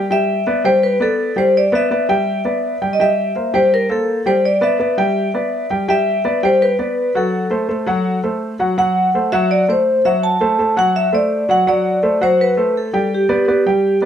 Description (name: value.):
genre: jazz.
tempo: 166 BPM.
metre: 4/4.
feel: straight.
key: G major.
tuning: A4 = 440 Hz.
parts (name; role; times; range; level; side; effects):
warm upright piano; accompaniment; 0.0-14.1 s; F#3 to G5; -18 LUFS; equal; none.
vibraphone with medium hard mallets; melody; 0.1-14.1 s; G4 to A5; -16 LUFS; equal; plate reverb.
room: moderate large studio reverb, RT60 0.9 s.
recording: dark, warm production.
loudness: -14 LUFS.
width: side -9 dB against mid.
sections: 0.0-14.1 A section.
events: none.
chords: 0.1 G6; 3.0 C6; 4.4 G6; 7.3 D (rootless); 13.1 G.